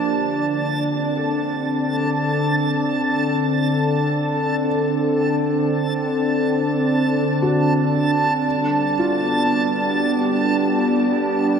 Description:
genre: ambient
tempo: free time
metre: none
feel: none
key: unclear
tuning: A4 = 440 Hz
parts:
  - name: warbly tape-like pad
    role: sustained chords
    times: 0.0-11.6 s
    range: D3 to D5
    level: -19 LUFS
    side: equal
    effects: chorus, built-in reverb
  - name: felt-muted upright piano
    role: arpeggios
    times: 0.0-11.6 s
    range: F4 to C5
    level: -31 LUFS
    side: left 1 dB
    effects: tape echo
  - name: backwards swelling texture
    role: texture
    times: 0.0-11.6 s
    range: A5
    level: -24 LUFS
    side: right 2 dB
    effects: built-in reverb
room: wet huge ambient reverb, RT60 7.7 s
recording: none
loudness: -18 LUFS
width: side -7 dB against mid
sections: 0.1-11.6 A section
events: none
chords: 0.1 D7; 8.5 G7

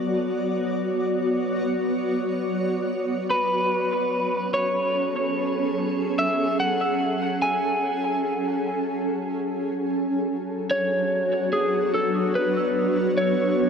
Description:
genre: ambient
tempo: 73 BPM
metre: 4/4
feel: swing 58% on 16ths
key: F# minor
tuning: A4 = 439 Hz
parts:
  - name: granular cloud pad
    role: sustained chords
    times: 0.0-13.7 s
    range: F#3 to D5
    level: -24 LUFS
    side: equal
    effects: built-in reverb
  - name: electric slide guitar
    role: melody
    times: 3.3-13.7 s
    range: G#4 to G#5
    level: -24 LUFS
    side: equal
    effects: dub echo
room: wet huge ambient reverb, RT60 4.0 s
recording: none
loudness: -22 LUFS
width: side -6 dB against mid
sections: 0.0-13.7 A section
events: none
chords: 0.0 Bmadd9/F#; 3.3 F#madd9; 9.9 Bm9/F#

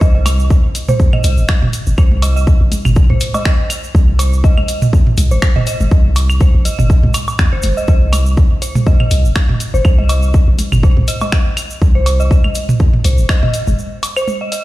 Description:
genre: minimal techno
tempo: 122 BPM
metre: 4/4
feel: swing 56% on 16ths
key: C minor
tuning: A4 = 441 Hz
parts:
  - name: dark detuned synth bell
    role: riff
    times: 0.0-14.6 s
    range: C5 to Eb5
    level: -23 LUFS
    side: right 1 dB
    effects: chorus, phaser, sidechain pumping, tape echo
  - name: punchy sub bass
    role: bass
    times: 0.0-13.7 s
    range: G1 to Eb2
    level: -13 LUFS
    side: equal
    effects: sidechain pumping
  - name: electronic kick drum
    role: drums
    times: 0.0-13.4 s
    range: none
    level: -11 LUFS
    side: equal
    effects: none
  - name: tube shaker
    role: percussion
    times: 0.0-14.6 s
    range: none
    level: -30 LUFS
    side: right 3 dB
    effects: none
  - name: house drum kit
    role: drums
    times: 0.3-14.6 s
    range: finger snaps, hi-hat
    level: -22 LUFS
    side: left 1 dB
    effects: none
  - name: electronic toms, claves and woodblock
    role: percussion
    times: 0.3-14.4 s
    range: none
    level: -19 LUFS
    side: right 1 dB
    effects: ping-pong delay
room: digital ambience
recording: played on a big sound system in a bare room, stone room reverb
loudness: -10 LUFS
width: side -17 dB against mid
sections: 0.0-14.6 A section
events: drop 0.0-14.6; break 13.8-14.6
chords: 0.0 Cm

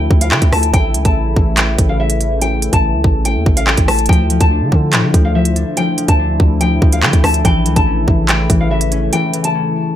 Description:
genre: hip hop, drill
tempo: 143 BPM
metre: 4/4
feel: half-time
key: D harmonic minor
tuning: A4 = 440 Hz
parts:
  - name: nylon-string guitar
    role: melody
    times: 0.0-9.9 s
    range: E5 to A5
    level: -19 LUFS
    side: left 1 dB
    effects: low-pass filter, digital delay
  - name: dark analog pad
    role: sustained chords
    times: 0.0-10.0 s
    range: C#3 to E4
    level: -22 LUFS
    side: left 1 dB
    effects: chorus
  - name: long sustained 808-style bass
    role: bass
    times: 0.0-9.1 s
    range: A1 to D3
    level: -16 LUFS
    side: equal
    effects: none
  - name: drill drum kit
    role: drums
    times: 0.1-9.5 s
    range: handclaps, hi-hat, kick drum, rim click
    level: -14 LUFS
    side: equal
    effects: none
  - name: concert harp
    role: accompaniment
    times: 4.1-10.0 s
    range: E3 to D4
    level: -19 LUFS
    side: left 4 dB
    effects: low-pass filter
room: little or no reverb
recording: none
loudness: -11 LUFS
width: side -11 dB against mid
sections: 0.0-10.0 A section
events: break 9.1-10.0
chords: 0.0 Dmadd9; 0.7 A; 4.1 Dmadd9; 7.4 A

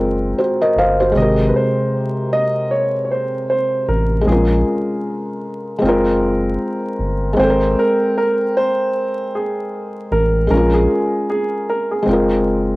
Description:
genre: lo-fi hip hop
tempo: 77 BPM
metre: 4/4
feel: swing 56% on 16ths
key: Ab major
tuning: A4 = 441 Hz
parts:
  - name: felt-muted upright piano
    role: accompaniment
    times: 0.0-12.8 s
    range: C3 to G5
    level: -17 LUFS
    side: left 1 dB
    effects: cassette tape
  - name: round analog bass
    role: bass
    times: 0.0-12.8 s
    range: Gb1 to Bb1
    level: -19 LUFS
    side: equal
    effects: none
  - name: dark upright piano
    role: melody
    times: 1.2-12.8 s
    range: Ab4 to Eb5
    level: -19 LUFS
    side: right 1 dB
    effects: cassette tape, tape echo
room: moderate studio reverb, RT60 0.6 s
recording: home recording on cassette, vinyl crackle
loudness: -15 LUFS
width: side -21 dB against mid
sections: 0.0-12.8 A section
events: none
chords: 0.0 Gbmaj9#11; 1.2 Abmaj9; 4.3 Bbm7; 5.8 Gbmaj9#11; 7.4 Abmaj9; 10.5 Bbm7; 12.1 Gbmaj9#11

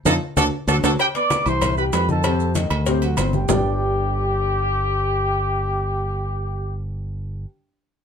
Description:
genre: latin, salsa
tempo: 192 BPM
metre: 4/4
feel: straight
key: G major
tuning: A4 = 439 Hz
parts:
  - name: warm horn section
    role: melody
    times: 0.1-0.9 s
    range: D4 to A4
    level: -20 LUFS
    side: right 3 dB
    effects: none
  - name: dark concert grand piano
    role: accompaniment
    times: 0.1-7.5 s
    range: C3 to C6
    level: -26 LUFS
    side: left 3 dB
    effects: none
  - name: modern bright fingered electric bass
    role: bass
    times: 0.1-7.4 s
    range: G1 to F2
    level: -23 LUFS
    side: right 1 dB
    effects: none
  - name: congas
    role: percussion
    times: 0.1-3.6 s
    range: none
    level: -26 LUFS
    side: left 2 dB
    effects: none
  - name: cowbell and bongos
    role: percussion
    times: 0.1-3.6 s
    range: none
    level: -28 LUFS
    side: left 7 dB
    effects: none
  - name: maracas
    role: percussion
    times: 0.1-3.6 s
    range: none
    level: -32 LUFS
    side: right 9 dB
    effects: none
  - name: timbales and agogo bells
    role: percussion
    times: 0.1-3.6 s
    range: none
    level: -28 LUFS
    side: right 6 dB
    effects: none
  - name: mellow trumpet section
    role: melody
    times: 1.0-6.7 s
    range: G4 to D6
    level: -22 LUFS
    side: equal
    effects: none
room: light reverb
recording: close, detailed microphones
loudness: -19 LUFS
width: side -7 dB against mid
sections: 1.0-3.5 A section; 3.5-6.0 B section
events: band accent 0.0-1.0; drum fill 0.1-1.0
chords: 0.4 D; 1.0 G (rootless); 1.6 C; 2.2 F7; 2.9 D7; 3.5 G

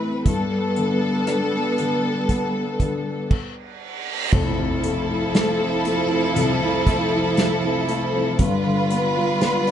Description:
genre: pop ballad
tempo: 59 BPM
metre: 4/4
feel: straight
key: unclear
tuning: A4 = 437 Hz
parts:
  - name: felt-muted upright piano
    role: accompaniment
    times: 0.0-9.7 s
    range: F1 to F4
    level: -25 LUFS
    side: left 3 dB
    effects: none
  - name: warm studio string section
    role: sustained chords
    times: 0.0-9.7 s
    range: F3 to B4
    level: -21 LUFS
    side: equal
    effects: plate reverb
  - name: unplugged drum kit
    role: drums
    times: 0.3-9.7 s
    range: crash cymbal, hi-hat, kick drum, rim click, snare drum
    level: -21 LUFS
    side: right 1 dB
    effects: none
  - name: reverse cymbal and impact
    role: sound effects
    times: 3.7-8.4 s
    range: none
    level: -30 LUFS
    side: right 3 dB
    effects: none
room: moderate small room reverb, RT60 0.6 s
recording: rough home demo mix, nothing above 10.6 kHz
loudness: -19 LUFS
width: side -9 dB against mid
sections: 0.0-4.3 A section; 4.3-9.7 B section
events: stop 3.3-4.3; reverse cymbal 3.7-4.3; impact 4.3-8.4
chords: 0.3 Gadd9; 4.3 Fmaj7; 8.4 G7

